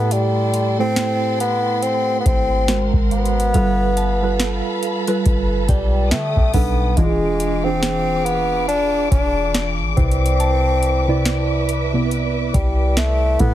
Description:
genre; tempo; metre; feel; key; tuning
contemporary R&B; 70 BPM; 4/4; swing 58% on 16ths; unclear; A4 = 436 Hz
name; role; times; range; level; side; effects
warm bassoon; melody; 0.0-13.5 s; G3 to D4; -21 LUFS; left 2 dB; tape echo
muted felt-like synth keys; accompaniment; 0.0-13.5 s; B2 to D5; -22 LUFS; right 3 dB; chorus
warm studio string section; sustained chords; 0.0-13.5 s; G#4 to D#6; -28 LUFS; left 1 dB; none
clean 808-style bass; bass; 0.0-13.5 s; E1 to D3; -21 LUFS; equal; none
soft synth bell; texture; 0.0-12.0 s; F5 to B5; -35 LUFS; equal; none
booming analog drum machine; drums; 0.1-13.5 s; hi-hat, kick drum, rim click, snare drum; -21 LUFS; equal; none
room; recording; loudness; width
little or no reverb; heavily compressed radio sound; -16 LUFS; side -12 dB against mid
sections
0.0-13.5 A section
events
none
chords
0.0 Am7; 2.7 G#9; 3.5 G9; 6.1 B7alt; 7.0 E7b9; 10.0 Cmaj9

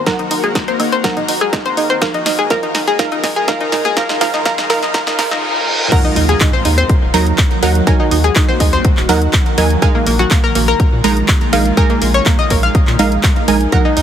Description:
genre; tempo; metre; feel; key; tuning
progressive house; 123 BPM; 4/4; straight; Eb dorian; A4 = 438 Hz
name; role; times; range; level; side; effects
shimmering ambient pad; sustained chords; 0.0-14.0 s; Db3 to Bb4; -22 LUFS; left 1 dB; chorus, built-in reverb, phaser, sidechain pumping
analog pluck; arpeggios; 0.0-14.0 s; Bb3 to F5; -17 LUFS; left 1 dB; chorus, sidechain pumping, digital delay
wide unison pluck; stabs; 0.0-14.0 s; F3 to Bb5; -18 LUFS; right 3 dB; sidechain pumping, digital delay
deep house drum kit; drums; 0.1-14.0 s; crash cymbal, handclaps, hi-hat, snare drum; -21 LUFS; left 1 dB; sidechain pumping on hats, sidechain pumping on cymbals
electronic kick drum; drums; 0.1-13.8 s; none; -14 LUFS; equal; overdrive
electronic congas, woodblock and toms; percussion; 0.8-5.4 s; none; -27 LUFS; left 1 dB; overdrive, sidechain pumping on perc, sidechain pumping on toms
reverse cymbal and impact; sound effects; 5.3-7.9 s; none; -22 LUFS; equal; none
saturated sub bass; bass; 6.2-14.0 s; Eb1 to Bb2; -16 LUFS; equal; sidechain pumping
room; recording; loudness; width
light reverb; heavily compressed radio sound, high-pass filter; -11 LUFS; side -9 dB against mid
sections
0.0-5.9 A section; 5.9-14.0 B section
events
build-up 0.0-5.9; drum fill 0.0-5.4; filter sweep on synth pluck 0.0-5.9; reverse cymbal 5.3-5.9; drop 5.9-14.0; impact 5.9-7.9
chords
0.0 Ebm; 2.0 Bbm7; 5.9 Ebm; 9.8 Bb7sus4

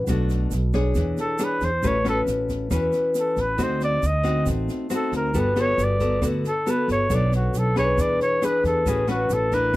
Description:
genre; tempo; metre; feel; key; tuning
bossa nova; 137 BPM; 4/4; straight; A major; A4 = 440 Hz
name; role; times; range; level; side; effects
nylon-string guitar; accompaniment; 0.0-9.8 s; B2 to C#5; -24 LUFS; left 2 dB; none
upright bass; bass; 0.0-9.8 s; G1 to E2; -24 LUFS; right 1 dB; none
open jazz drum kit; drums; 0.1-9.8 s; kick drum, rim click, snare drum; -31 LUFS; equal; none
egg shaker; percussion; 0.1-9.8 s; none; -41 LUFS; right 18 dB; none
clear flugelhorn; melody; 1.2-9.8 s; F#4 to Eb5; -25 LUFS; equal; none
room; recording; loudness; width
little or no reverb; dry, close 1970s-style studio recording; -20 LUFS; side -17 dB against mid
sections
0.0-1.8 A section; 1.8-9.8 A section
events
flugelhorn solo 0.0-9.8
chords
0.1 Bm7; 1.0 E6; 1.8 A69; 3.6 D7b9; 5.3 Gmaj9; 7.1 Bm9; 8.0 E7; 8.9 A69

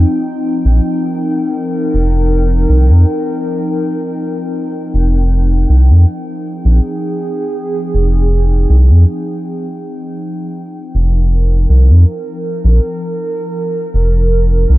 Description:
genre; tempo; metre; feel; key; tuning
ambient dub; 80 BPM; 4/4; swing 55% on 16ths; F minor; A4 = 436 Hz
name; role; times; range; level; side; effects
warbly tape-like pad; sustained chords; 0.0-14.8 s; F3 to G5; -18 LUFS; equal; chorus, built-in reverb
round analog bass; bass; 0.0-14.8 s; F1 to F2; -8 LUFS; equal; none
room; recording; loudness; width
light reverb; dark, warm production; -11 LUFS; side -18 dB against mid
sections
0.0-14.8 A section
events
none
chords
0.0 Cm7; 4.6 Fm9; 10.6 Cm7/F

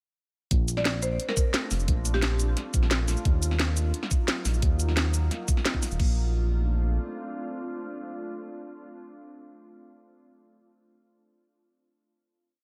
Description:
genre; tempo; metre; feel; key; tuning
liquid drum and bass; 175 BPM; 4/4; straight; Bb major; A4 = 437 Hz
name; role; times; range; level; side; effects
glassy FM pad; sustained chords; 1.2-9.5 s; Gb3 to F4; -40 LUFS; equal; ensemble chorus, built-in reverb, sidechain pumping
smooth synth bass; bass; 0.5-7.0 s; Eb1 to Eb2; -28 LUFS; equal; none
drum and bass drum kit; drums; 0.5-6.1 s; crash cymbal, hi-hat, shaker, snare drum; -31 LUFS; equal; none
electronic kick drum; drums; 0.5-6.1 s; none; -27 LUFS; equal; none
buzzing marimba with medium hard mallets; melody; 0.8-2.6 s; G4 to D5; -35 LUFS; equal; digital delay
room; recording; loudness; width
little or no reverb; none; -27 LUFS; mono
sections
0.5-6.0 drop; 6.0-8.7 final chord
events
drop 0.5-6.0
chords
0.5 Bbmaj9; 3.3 Ebmadd9; 6.0 Bbmaj9

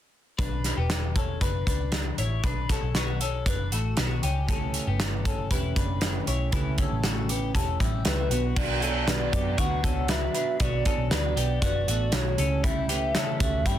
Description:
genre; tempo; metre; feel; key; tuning
jangly indie pop; 118 BPM; 4/4; straight; unclear; A4 = 439 Hz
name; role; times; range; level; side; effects
twelve-string electric guitar; arpeggios; 0.4-13.8 s; G3 to C#5; -33 LUFS; left 7 dB; phaser, slapback echo
vintage muted picked electric bass; bass; 0.4-13.8 s; E1 to G2; -28 LUFS; equal; none
modern studio drum kit; drums; 0.4-13.8 s; crash cymbal, hi-hat, kick drum, snare drum; -27 LUFS; equal; none
fingerpicked plugged-in steel-string acoustic guitar; accompaniment; 4.5-13.8 s; B2 to G4; -33 LUFS; right 6 dB; none
hollow clarinet-like synth lead; melody; 8.1-13.8 s; B4 to G5; -30 LUFS; equal; chorus
room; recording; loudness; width
light reverb; dense, heavily limited modern master; -24 LUFS; side -11 dB against mid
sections
0.4-8.6 A section; 8.6-13.8 B section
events
none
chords
0.4 A7; 8.3 Bm; 12.4 A7/C#

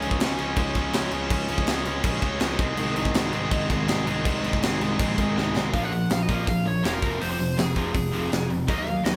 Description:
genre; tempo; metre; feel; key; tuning
punk rock; 163 BPM; 4/4; straight; Bb minor; A4 = 438 Hz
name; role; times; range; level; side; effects
cranked stack guitar; riff; 0.0-9.2 s; F2 to Db4; -31 LUFS; equal; overdrive
distorted electric guitar; riff; 0.0-9.2 s; F2 to Eb4; -32 LUFS; equal; distortion
fuzz picked electric bass; bass; 0.0-9.2 s; E1 to Eb2; -34 LUFS; equal; overdrive
tight metal drum kit; drums; 0.0-9.1 s; crash cymbal, hi-hat, kick drum, snare drum; -29 LUFS; equal; none
distorted electric guitar; riff; 2.8-5.7 s; Ab2 to Ab3; -31 LUFS; equal; distortion
high-gain lead guitar; melody; 5.7-9.1 s; Ab4 to Gb5; -33 LUFS; equal; distortion
room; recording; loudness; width
moderate large studio reverb, RT60 1.3 s; band playing live in one room; -25 LUFS; mono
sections
0.0-5.7 A section; 5.7-9.2 B section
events
drum fill 5.4-5.7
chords
0.0 Db; 2.6 Ab/C; 5.7 Bb5; 7.0 Fm

